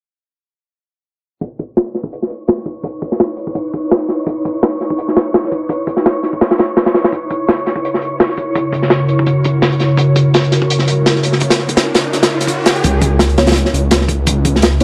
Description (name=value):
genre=drum and bass, jungle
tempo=168 BPM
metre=4/4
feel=swing 54% on 16ths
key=C# dorian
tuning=A4 = 439 Hz
part: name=ethereal airy pad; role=sustained chords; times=2.3-14.8 s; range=C#3 to C#5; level=-19 LUFS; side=equal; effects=ensemble chorus, built-in reverb
part: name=crunchy breakbeat drum kit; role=drums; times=1.4-14.8 s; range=hi-hat, kick drum, snare drum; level=-17 LUFS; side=equal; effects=high-pass filter on kick, high-pass filter on hats, high-pass filter on snare, high-pass filter on room
part: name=wind-like tuned noise texture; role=texture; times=2.9-12.8 s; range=C#6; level=-32 LUFS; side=equal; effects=built-in reverb
part: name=riser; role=sound effects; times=10.9-12.8 s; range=none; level=-25 LUFS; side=equal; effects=none
part: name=detuned saw bass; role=bass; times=12.8-14.8 s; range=C#2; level=-16 LUFS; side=equal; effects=none
part: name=deep mellow chord stab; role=stabs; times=13.4-14.8 s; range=B3 to C#5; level=-21 LUFS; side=equal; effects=chorus, phaser, cassette tape, dub echo
room=light reverb, studio ambience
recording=dark, warm production, low-pass filter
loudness=-15 LUFS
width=mono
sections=1.4-12.8 A section; 12.8-14.8 B section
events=filter sweep 1.4-12.8; riser 10.9-12.8; build-up 12.8-14.8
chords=1.4 C#m9; 7.1 F#7/C#; 12.8 C#m9